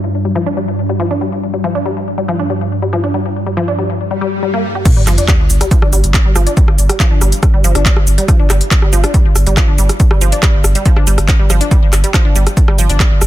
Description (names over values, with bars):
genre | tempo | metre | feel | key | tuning
driving peak-time techno | 140 BPM | 4/4 | straight | unclear | A4 = 439 Hz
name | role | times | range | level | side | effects
deep dark ambient pad | drone | 0.0-4.9 s | G2 | -20 LUFS | right 1 dB | chorus, built-in reverb, sidechain pumping
resonant blip pluck | riff | 0.2-13.1 s | F3 to G4 | -18 LUFS | left 1 dB | chorus, vintage 12-bit sampler grit, sidechain pumping, ping-pong delay
swell and sub drop | sound effects | 4.1-6.6 s | none | -20 LUFS | equal | none
electronic kick drum | drums | 4.9-13.1 s | none | -11 LUFS | equal | none
techno drum kit | drums | 4.9-13.3 s | crash cymbal, handclaps, hi-hat, rim click, shaker | -18 LUFS | equal | sidechain pumping on hats, sidechain pumping on cymbals, sidechain pumping on perc
saturated sub bass | bass | 5.0-13.3 s | G1 | -14 LUFS | equal | tube saturation, sidechain pumping, low-pass filter
room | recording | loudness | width
digital ambience | dense, heavily limited modern master | -10 LUFS | side -14 dB against mid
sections
0.0-4.9 A section; 4.9-13.3 B section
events
swell 4.1-4.9; drop 4.9-13.3; impact 4.9-6.6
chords
none